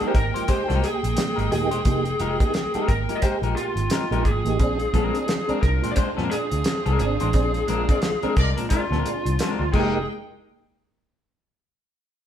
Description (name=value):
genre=funk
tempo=88 BPM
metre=4/4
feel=swing 60% on 16ths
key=F dorian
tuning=A4 = 442 Hz
part: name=lead guitar through a small cranked amp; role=melody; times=0.0-10.1 s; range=F4 to Eb5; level=-27 LUFS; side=left 1 dB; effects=overdrive
part: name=semi-hollow electric guitar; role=accompaniment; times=0.0-10.0 s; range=Ab3 to C5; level=-29 LUFS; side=left 5 dB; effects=none
part: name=warm studio string section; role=sustained chords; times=0.0-10.1 s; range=Ab3 to G5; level=-33 LUFS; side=right 2 dB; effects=none
part: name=mellow tonewheel organ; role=stabs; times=0.0-10.0 s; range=Bb2 to Ab4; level=-28 LUFS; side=right 4 dB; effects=overdrive, chorus vibrato, fast rotary speaker
part: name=vintage muted picked electric bass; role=bass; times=0.0-10.1 s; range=Eb1 to F2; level=-26 LUFS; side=equal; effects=none
part: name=cloth-damped thuddy drum kit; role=drums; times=0.0-9.9 s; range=crash cymbal, hi-hat, kick drum, snare drum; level=-24 LUFS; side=equal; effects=none
part: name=warm horn section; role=second line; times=7.9-10.0 s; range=Ab3 to G5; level=-33 LUFS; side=left 3 dB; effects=none
room=moderate stone room reverb, RT60 1.0 s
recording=band playing live in one room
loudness=-20 LUFS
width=side -10 dB against mid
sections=0.0-10.1 A section; 10.1-12.3 B section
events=band accent 7.3-10.1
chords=0.0 Fm11; 4.6 Bb9; 9.7 Fm11; 10.1 N.C.